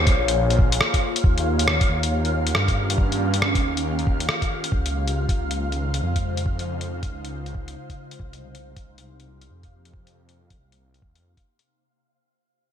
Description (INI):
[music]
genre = future garage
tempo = 138 BPM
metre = 4/4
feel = swing 62% on 16ths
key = unclear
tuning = A4 = 441 Hz
[part]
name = ethereal airy pad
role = sustained chords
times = 0.0-11.6 s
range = C3 to Db5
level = -29 LUFS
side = left 2 dB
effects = ensemble chorus, built-in reverb, phaser, sidechain pumping
[part]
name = swelling detuned saw bass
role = bass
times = 0.0-11.4 s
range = Bb1 to G2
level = -25 LUFS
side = equal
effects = tube saturation, sidechain pumping
[part]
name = flickering grainy texture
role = texture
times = 0.0-11.7 s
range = F5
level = -32 LUFS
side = right 4 dB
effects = built-in reverb, analog chorus
[part]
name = electronic kick drum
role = drums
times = 0.1-11.4 s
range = none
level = -22 LUFS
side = equal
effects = studio reverb
[part]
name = lo-fi sampler-style drum kit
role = drums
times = 0.1-11.7 s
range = hi-hat, rim click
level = -24 LUFS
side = left 1 dB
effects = studio reverb, gated reverb
[sound]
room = light reverb, digital ambience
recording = bright 1980s-style digital production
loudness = -20 LUFS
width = side -9 dB against mid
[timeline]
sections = 0.0-11.7 A section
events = fade-out 0.0-11.7; filter sweep on detuned saw bass 0.0-11.7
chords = 0.0 Bbm7; 1.2 Eb7; 4.7 Dbmaj7; 8.2 Cm7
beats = 0.37 0.81 | 1.24 1.68 2.11 2.54 | 2.98 3.41 3.85 4.28 | 4.72 5.15 5.59 6.02 | 6.46 6.89 7.33 7.76 | 8.20 8.63 9.07 9.50 | 9.94 10.37 10.81 11.24